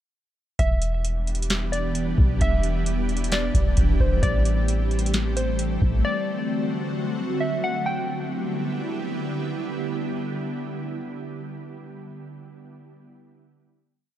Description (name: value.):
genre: hip hop, atmospheric cloud-rap.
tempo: 132 BPM.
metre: 4/4.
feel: half-time.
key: E minor.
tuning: A4 = 437 Hz.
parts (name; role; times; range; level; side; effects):
warbly dusty pluck; melody; 0.6-9.2 s; C5 to G5; -30 LUFS; equal; chorus, low-pass filter, tape echo.
ethereal airy pad; sustained chords; 1.2-12.3 s; D3 to G4; -28 LUFS; equal; ensemble chorus, built-in reverb, sidechain pumping.
clean 808-style bass; bass; 0.6-6.0 s; E1 to B1; -23 LUFS; equal; none.
booming analog drum machine; drums; 0.6-6.0 s; hi-hat, kick drum, snare drum; -24 LUFS; equal; none.
room: digital ambience.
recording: none.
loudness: -22 LUFS.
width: side -12 dB against mid.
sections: 0.6-7.9 verse; 7.9-11.5 final chord.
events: none.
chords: 0.6 Em7; 4.2 Am7; 6.0 D7; 7.9 Em7.